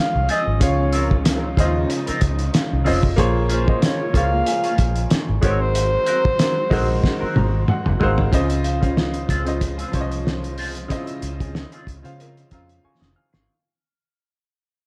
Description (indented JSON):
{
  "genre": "lush 1970s-style soul",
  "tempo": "93 BPM",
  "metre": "4/4",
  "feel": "swing 54% on 16ths",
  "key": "Db major",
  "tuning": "A4 = 439 Hz",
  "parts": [
    { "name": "warm flugelhorn", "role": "melody", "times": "0.0-7.7 s", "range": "C5 to F5", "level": "-25 LUFS", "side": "equal", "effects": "none" },
    { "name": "warm grand piano", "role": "accompaniment", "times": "0.0-13.6 s", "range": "Db3 to F6", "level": "-27 LUFS", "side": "equal", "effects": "none" },
    { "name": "warm studio string section", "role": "sustained chords", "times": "0.0-13.5 s", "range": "Db3 to C5", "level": "-34 LUFS", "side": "equal", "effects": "none" },
    { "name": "electric guitar through a small old amp", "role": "riff", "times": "0.0-13.5 s", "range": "C4 to Bb4", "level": "-32 LUFS", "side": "equal", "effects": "wah" },
    { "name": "celesta", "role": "texture", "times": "0.0-10.7 s", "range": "F5 to Ab5", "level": "-39 LUFS", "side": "equal", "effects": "none" },
    { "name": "vintage muted fingered electric bass", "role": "bass", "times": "0.2-13.5 s", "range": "F1 to Db3", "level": "-25 LUFS", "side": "equal", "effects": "none" },
    { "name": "cloth-damped thuddy drum kit", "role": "drums", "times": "0.3-13.5 s", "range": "hi-hat, kick drum, snare drum, toms", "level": "-24 LUFS", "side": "equal", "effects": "none" }
  ],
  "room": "light reverb",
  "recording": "dark, warm production",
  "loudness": "-20 LUFS",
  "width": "mono",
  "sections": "0.0-8.3 A section; 8.3-13.5 B section",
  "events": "drum fill 7.0-8.3, 12.8-13.5; grand piano fill 7.0-8.3, 12.2-13.5; fade-out 8.3-13.5",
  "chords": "0.0 Dbmaj7; 3.2 Bbm7; 5.4 Ab7; 8.3 Dbmaj7",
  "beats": "| 0.61 1.25 1.90 2.54 | 3.18 3.82 4.47 5.11 | 5.75 6.39 7.04 7.68 | 8.32 8.97 9.61 10.26 | 10.90 11.54 12.19 12.83"
}